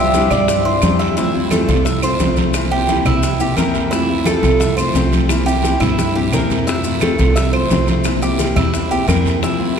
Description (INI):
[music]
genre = latin, Cuban son and guajira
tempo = 174 BPM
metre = 4/4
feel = straight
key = F major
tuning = A4 = 439 Hz
[part]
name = warm clarinet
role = melody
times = 0.0-0.8 s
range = E5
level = -24 LUFS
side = left 4 dB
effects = none
[part]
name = fingerpicked steel-string acoustic guitar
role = accompaniment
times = 0.0-9.8 s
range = C3 to F4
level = -20 LUFS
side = left 2 dB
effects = none
[part]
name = Cuban tres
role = arpeggios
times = 0.0-9.8 s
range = E4 to E5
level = -20 LUFS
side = right 3 dB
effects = none
[part]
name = upright bass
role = bass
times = 0.0-9.8 s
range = C2 to G2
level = -20 LUFS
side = equal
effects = none
[part]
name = bongos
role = percussion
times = 0.1-9.8 s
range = none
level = -26 LUFS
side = left 3 dB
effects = none
[part]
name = congas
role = percussion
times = 0.1-9.8 s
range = none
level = -22 LUFS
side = equal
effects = none
[part]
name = guiro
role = percussion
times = 0.1-9.8 s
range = none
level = -29 LUFS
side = right 6 dB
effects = none
[part]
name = maracas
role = percussion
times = 0.1-9.6 s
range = none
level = -31 LUFS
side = left 6 dB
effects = none
[part]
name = claves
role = percussion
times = 0.3-9.3 s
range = none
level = -31 LUFS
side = right 5 dB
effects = none
[sound]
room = wet cathedral reverb, RT60 5.1 s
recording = recorded in a church or concert hall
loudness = -13 LUFS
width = side -7 dB against mid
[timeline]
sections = 0.0-1.2 A section; 1.2-9.8 B section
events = drum fill 6.0-6.7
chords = 0.0 Cadd9; 1.2 Fmaj7; 2.5 C7; 3.9 Fmaj7; 5.3 C7; 6.7 Fmaj7; 8.1 C7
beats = 0.14 0.48 0.83 | 1.17 1.51 1.86 2.20 | 2.54 2.89 3.23 3.57 | 3.92 4.26 4.61 4.95 | 5.29 5.64 5.98 6.33 | 6.67 7.02 7.36 7.71 | 8.05 8.40 8.74 9.09 | 9.43 9.78